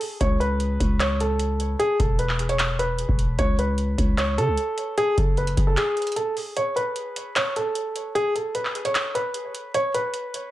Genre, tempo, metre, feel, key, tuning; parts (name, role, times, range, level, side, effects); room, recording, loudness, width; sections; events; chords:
hip hop, trap; 151 BPM; 4/4; half-time; A4 = 440 Hz
booming analog drum machine; drums; 0.0-10.4 s; handclaps, hi-hat, kick drum; -25 LUFS; equal
dark baby grand piano; melody; 0.2-10.5 s; G#4 to C#5; -24 LUFS; equal; tape echo
growling 808-style bass; bass; 0.2-5.8 s; E1 to C#3; -24 LUFS; equal
light reverb; -21 LUFS; side -15 dB against mid
0.0-10.5 A section
break 0.0, 5.8-6.6, 6.6-10.5
0.2 Aadd9/C#; 1.8 E5; 3.4 Aadd9/C#; 5.0 F#madd9; 6.6 N.C.